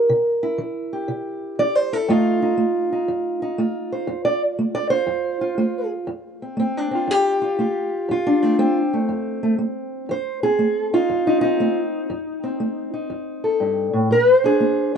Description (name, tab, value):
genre	acoustic country blues, solo or duo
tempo	120 BPM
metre	4/4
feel	swing 67% on 8ths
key	F mixolydian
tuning	A4 = 443 Hz
part	fingerpicked steel-string acoustic guitar	solo	0.0-15.0 s	F2 to D5	-18 LUFS	equal	none
room	light reverb, small room reverb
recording	rough home demo mix, nothing above 10.5 kHz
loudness	-18 LUFS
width	side -7 dB against mid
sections	0.0-6.1 A section; 6.1-15.0 B section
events	steel-string acoustic guitar solo 0.0-6.1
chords	0.0 C7; 2.1 F7; 14.1 Bb7